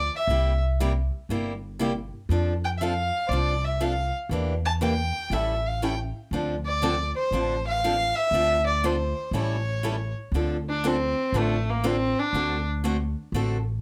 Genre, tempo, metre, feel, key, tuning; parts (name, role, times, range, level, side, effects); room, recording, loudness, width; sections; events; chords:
acoustic string swing (jazz manouche); 120 BPM; 4/4; swing 65% on 8ths; D minor; A4 = 440 Hz
warm violin; melody; 0.0-12.7 s; A3 to A5; -28 LUFS; equal
upright bass; bass; 0.0-13.8 s; G1 to F2; -30 LUFS; equal
picked steel-string acoustic guitar; accompaniment; 0.3-13.6 s; C3 to A4; -32 LUFS; equal
moderate club reverb, RT60 0.6 s; -26 LUFS; mono
0.0-10.3 A section; 10.3-13.8 A section
0.3 C7; 2.3 F6; 4.3 Em7b5; 5.3 A7; 6.3 Dm7; 9.3 A7; 10.3 Dm7; 12.3 D7